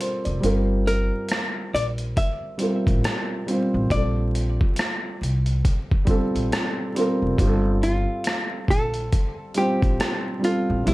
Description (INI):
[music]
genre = lo-fi hip hop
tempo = 69 BPM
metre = 4/4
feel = swing 61% on 16ths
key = G dorian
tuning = A4 = 440 Hz
[part]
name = felt-muted upright piano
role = accompaniment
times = 0.0-10.9 s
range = F3 to D5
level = -25 LUFS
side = right 1 dB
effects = cassette tape
[part]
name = boom bap sampler-style drum kit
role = drums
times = 0.0-10.9 s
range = hi-hat, kick drum, rim click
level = -24 LUFS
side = equal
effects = none
[part]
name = upright bass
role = bass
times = 0.3-10.9 s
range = F1 to C2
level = -24 LUFS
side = equal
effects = none
[part]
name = hollow-body jazz guitar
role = melody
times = 0.9-10.9 s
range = E4 to E5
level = -27 LUFS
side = equal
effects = none
[sound]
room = moderate studio reverb, RT60 0.6 s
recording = vinyl crackle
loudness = -20 LUFS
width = side -19 dB against mid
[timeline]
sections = 0.0-10.9 A section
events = kick muted 0.4-2.2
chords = 0.4 Gm7; 3.9 Bbmaj9; 7.4 G7(no3)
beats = | 0.43 1.30 2.17 3.04 | 3.91 4.78 5.64 6.51 | 7.38 8.25 9.12 9.99 | 10.86